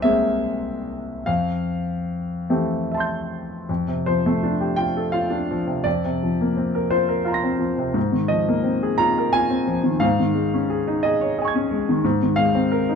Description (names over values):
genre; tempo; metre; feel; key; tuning
classical, impressionist solo piano; 48-60 BPM (dotted quarters); 6/8; rubato; unclear; A4 = 440 Hz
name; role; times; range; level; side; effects
clear grand piano; solo; 0.0-13.0 s; C2 to Bb6; -19 LUFS; left 1 dB; none
room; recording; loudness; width
moderate small room reverb, RT60 0.5 s; dark, warm production; -19 LUFS; side -6 dB against mid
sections
0.0-3.7 A section; 3.7-13.0 B section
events
none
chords
0.0 Caug7; 1.3 Fmaj9; 3.7 F69; 5.9 Bbadd9/F; 8.0 Ab69; 10.0 Dbadd9/Ab; 12.0 G#69